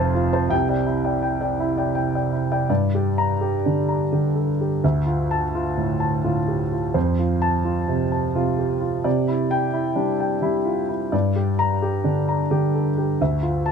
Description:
neoclassical minimalist piano; 85 BPM; 3/4; rubato; G dorian; A4 = 439 Hz
warm baby grand piano; solo; 0.0-13.7 s; F1 to Bb5; -19 LUFS; equal
light reverb; close, detailed microphones; -19 LUFS; side -6 dB against mid
0.0-2.7 A section; 2.7-13.7 B section
0.0 F; 0.5 Cadd9; 2.7 Gm; 4.8 Dmadd9; 7.0 F; 9.1 Cadd9; 11.1 Gm; 13.2 Dmadd9

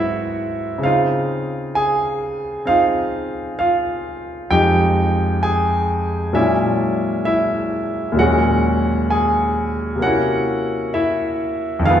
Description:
solo jazz; 65 BPM; 4/4; swing 68% on 8ths; A4 = 440 Hz
warm concert grand piano; solo; 0.0-12.0 s; Eb2 to Ab5; -16 LUFS; equal
wet recital hall reverb, RT60 1.7 s; recorded in a church or concert hall; -16 LUFS; side -9 dB against mid
0.0-12.0 A section
0.0 Ab7alt; 0.8 Dbmaj9; 4.5 Fm7; 6.3 Bb7alt; 8.2 Ebm7; 10.0 C7b9

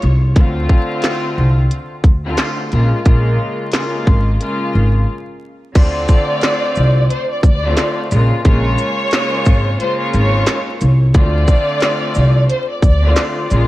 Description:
hip hop, boom-bap hip-hop; 89 BPM; 4/4; swing 60% on 16ths; A4 = 438 Hz
warm studio string section; accompaniment; 0.0-13.7 s; Db3 to F4; -21 LUFS; left 1 dB; cassette tape, high-pass filter, low-pass filter
upright bass; bass; 0.0-13.7 s; Ab1 to D2; -14 LUFS; equal
glitchy drum kit; drums; 0.0-13.7 s; crash cymbal, handclaps, hi-hat, kick drum, shaker, snare drum; -14 LUFS; equal; vintage 12-bit sampler grit
warm studio violin section; melody; 5.8-13.3 s; C5 to D5; -20 LUFS; equal; high-pass filter, low-pass filter, analog delay
light reverb, small room reverb; vinyl crackle; -12 LUFS; side -16 dB against mid
0.0-5.8 A section; 5.8-13.7 B section
break 5.1-5.8
0.4 Dm7; 2.7 Bbm7; 5.8 Dm7; 8.1 Bbm7; 11.1 Dm7

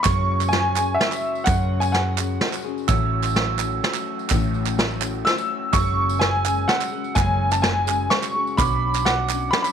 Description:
indie folk with a building arrangement; 126 BPM; 3/4; straight; A4 = 440 Hz
clear upright piano; melody; 0.0-2.6, 5.2-9.7 s; E5 to E6; -23 LUFS; left 1 dB
clear upright piano; accompaniment; 0.0-9.7 s; F#1 to C#5; -34 LUFS; right 14 dB
group handclap; percussion; 0.0-9.7 s; -28 LUFS; right 17 dB
glockenspiel with rubber mallets; second line; 0.1-9.7 s; C#6 to E6; -29 LUFS; right 12 dB
picked steel-string acoustic guitar; accompaniment; 0.1-9.7 s; F#2 to G#4; -30 LUFS; left 14 dB
hollow-body short-scale fingered electric bass; bass; 0.1-9.5 s; F#1 to F#2; -24 LUFS; equal
vintage brush drum kit; drums; 0.1-9.6 s; hi-hat, kick drum, snare drum; -23 LUFS; right 1 dB
tambourine; percussion; 0.1-9.7 s; -39 LUFS; left 15 dB
light reverb; 1960s-style stereo with parts hard left and right; -19 LUFS; side -8 dB against mid
0.1-9.7 A section
0.1 F#sus2; 2.9 A6; 5.7 F#sus2; 8.6 Bmadd9

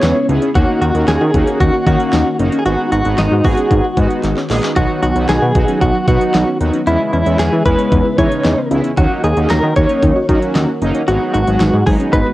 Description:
synth-pop; 114 BPM; 4/4; straight; A4 = 439 Hz
direct-recorded clean electric guitar; melody; 0.0-12.3 s; D#4 to C#5; -18 LUFS; equal; tremolo, cassette tape
analog synth brass; accompaniment; 0.0-12.3 s; F#3 to G#4; -19 LUFS; right 1 dB; chorus, cassette tape
ensemble organ-string; sustained chords; 0.0-12.3 s; C#3 to F#4; -22 LUFS; equal; phaser, ensemble chorus, cassette tape
wide unison pluck; arpeggios; 0.0-12.3 s; C#4 to F#4; -23 LUFS; left 1 dB
fat analog bass; bass; 0.0-12.2 s; F#1 to E3; -16 LUFS; equal
pop drum kit; drums; 0.0-12.3 s; handclaps, hi-hat, kick drum, snare drum; -17 LUFS; equal
light reverb; home recording on cassette; -12 LUFS; side -16 dB against mid
0.0-12.3 A section
drum fill 4.2-4.8
0.0 E6; 0.6 D#m7; 2.7 G#m7; 4.8 B; 6.9 E6; 9.0 D#m7; 11.1 G#m7

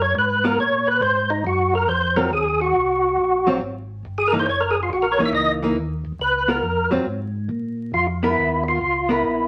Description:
jazz; 139 BPM; 4/4; swing 67% on 8ths; Db mixolydian; A4 = 440 Hz
percussive tonewheel organ; melody; 0.0-9.5 s; Eb4 to Fb5; -21 LUFS; equal; slow rotary speaker, overdrive, chorus vibrato
mellow tonewheel organ; bass; 0.0-9.5 s; Gb1 to Bb2; -30 LUFS; equal; slow rotary speaker
archtop guitar, miked and amplified; accompaniment; 0.4-9.5 s; Fb3 to Bb4; -25 LUFS; equal
wet studio reverb, RT60 0.7 s; vinyl crackle; -21 LUFS; mono
0.0-7.9 A section; 7.9-9.5 B section
tonewheel organ solo 0.0-7.9
0.0 Db13; 1.0 Ab13; 4.5 Gb6; 6.2 Db6; 7.1 Absus2; 7.9 Db13

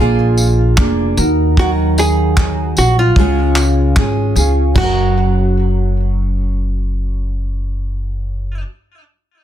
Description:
acoustic pop; 75 BPM; 4/4; straight; F# major; A4 = 440 Hz
archtop guitar, miked and amplified; melody; 0.0-8.6 s; E#4 to G#4; -19 LUFS; right 1 dB; plate reverb, digital delay
nylon-string guitar; accompaniment; 0.0-8.7 s; C#3 to A#4; -18 LUFS; right 2 dB; double-tracked left and right, plate reverb
upright bass; bass; 0.0-8.6 s; E#1 to D#2; -15 LUFS; equal
cloth-damped thuddy drum kit; drums; 0.4-4.9 s; handclaps, kick drum, splash cymbal, tambourine, toms; -15 LUFS; equal
light reverb; dense, heavily limited modern master; -12 LUFS; side -11 dB against mid
0.0-4.8 A section; 4.8-7.9 B section
0.0 A#7; 1.2 D#m; 3.2 C#; 4.8 F#

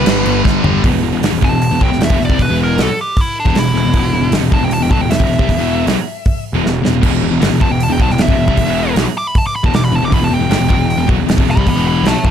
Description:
heavy metal; 155 BPM; 4/4; straight; E phrygian; A4 = 442 Hz
nasal lead guitar with a parked wah; melody; 0.0-12.3 s; D4 to D6; -20 LUFS; equal; overdrive, ping-pong delay
heavy high-gain guitar; riff; 0.0-0.8 s; G2 to G3; -20 LUFS; equal; distortion
scooped high-gain guitar; riff; 0.0-12.3 s; E2 to G3; -19 LUFS; right 12 dB; distortion
sludgy distorted guitar; riff; 0.0-12.3 s; E2 to G3; -18 LUFS; left 13 dB; overdrive
fuzz picked electric bass; bass; 0.0-12.3 s; E1 to C2; -18 LUFS; equal; overdrive
modern studio drum kit; drums; 0.1-12.3 s; crash cymbal, hi-hat, kick drum, snare drum, toms; -16 LUFS; right 1 dB
little or no reverb; dark, warm production; -11 LUFS; side -9 dB against mid
0.8-12.3 A section
drum fill 0.5-0.8, 6.6-7.0; lead electric guitar solo 0.8-12.3
0.0 G; 0.8 Em

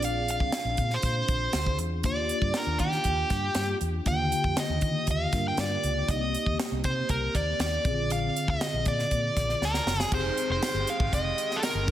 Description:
polished 1980s jazz-funk pop; 119 BPM; 4/4; straight; Eb major; A4 = 439 Hz
nasal lead guitar with a parked wah; melody; 0.0-11.9 s; G4 to G5; -29 LUFS; equal; overdrive
mellow tine electric piano; accompaniment; 0.0-11.9 s; D3 to Bb4; -33 LUFS; left 1 dB; medium stereo tremolo, analog chorus, slapback echo
vintage muted fingered electric bass; bass; 0.0-11.9 s; F1 to Eb3; -31 LUFS; equal
tight funk drum kit; drums; 0.0-11.9 s; crash cymbal, hi-hat, kick drum, snare drum; -31 LUFS; equal
pipe organ, clarinet reed; sustained chords; 10.1-11.9 s; C3 to G5; -38 LUFS; right 3 dB
tambourine; percussion; 10.6-11.7 s; -43 LUFS; right 8 dB
moderate lush hall reverb, RT60 1.6 s; big arena sound; -25 LUFS; side -12 dB against mid
0.0-10.1 A section; 10.1-11.9 B section
drum fill 9.6-10.1
0.0 Bb7; 2.0 Ebmaj7; 6.1 Cm7; 7.9 Bb7; 10.1 Fm9

